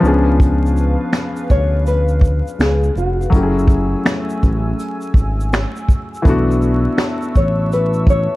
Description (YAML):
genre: lo-fi hip hop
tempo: 82 BPM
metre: 4/4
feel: swing 64% on 16ths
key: B dorian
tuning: A4 = 441 Hz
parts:
  - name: felt-muted upright piano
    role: accompaniment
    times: 0.0-8.4 s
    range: E3 to G#4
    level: -20 LUFS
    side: left 2 dB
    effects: low-pass filter
  - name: hollow soft pad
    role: sustained chords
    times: 0.0-8.4 s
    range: A3 to E6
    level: -29 LUFS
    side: right 1 dB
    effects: chorus, low-pass filter
  - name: smooth synth bass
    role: bass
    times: 0.0-8.3 s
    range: E#1 to D2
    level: -17 LUFS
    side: equal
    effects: none
  - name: vintage brush drum kit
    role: drums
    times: 0.0-8.3 s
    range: finger snaps, hi-hat, kick drum, shaker, snare drum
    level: -15 LUFS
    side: equal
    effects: none
  - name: nylon-string guitar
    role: melody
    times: 1.5-8.4 s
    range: F#4 to C#5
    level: -21 LUFS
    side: left 2 dB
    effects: low-pass filter
room: little or no reverb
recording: dark, warm production, vinyl crackle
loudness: -14 LUFS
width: side -18 dB against mid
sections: 0.0-8.4 A section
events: none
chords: 0.0 C#7b9; 3.3 F#m9; 6.2 Bm11